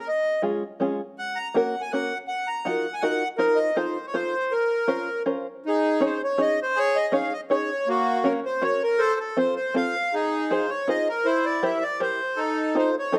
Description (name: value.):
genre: musette waltz.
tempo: 161 BPM.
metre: 3/4.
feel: straight.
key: unclear.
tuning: A4 = 440 Hz.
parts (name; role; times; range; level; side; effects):
accordion; melody; 0.0-13.2 s; Bb3 to Bb5; -26 LUFS; equal; none.
open-back banjo; accompaniment; 0.4-13.2 s; Ab3 to Db5; -28 LUFS; equal; none.
room: light reverb.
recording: close, detailed microphones.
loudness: -25 LUFS.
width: mono.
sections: 0.0-5.6 A section; 5.6-13.2 B section.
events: none.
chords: 0.1 Db; 1.2 Gb; 2.3 Ebmadd9; 3.4 F7sus4; 3.8 F7; 4.5 Bbmadd9; 5.6 Dbsus2; 7.9 Gb; 9.0 F; 10.1 Fm7; 11.3 C7; 12.4 F7.